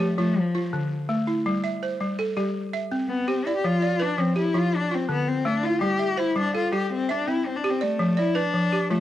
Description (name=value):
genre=west african traditional, West African string and xylophone music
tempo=110 BPM (dotted quarters)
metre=12/8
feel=straight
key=unclear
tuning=A4 = 440 Hz
part: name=rich cello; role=melody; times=0.0-9.0 s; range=F3 to G4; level=-25 LUFS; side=left 4 dB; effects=none
part: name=balafon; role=arpeggios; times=0.0-9.0 s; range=D3 to E5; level=-24 LUFS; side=right 1 dB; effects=none
room=light reverb, studio reverb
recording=home recording on cassette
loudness=-22 LUFS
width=side -12 dB against mid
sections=0.0-9.0 A section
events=none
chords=0.4 Dm; 1.5 Am7/G; 2.5 C; 3.6 G7/F; 4.7 Dm; 5.8 Gsus4; 6.9 C; 8.0 G9/F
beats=0.37 0.91 | 1.46 2.00 2.55 3.09 | 3.64 4.18 4.73 5.27 | 5.82 6.37 6.91 7.46 | 8.00 8.55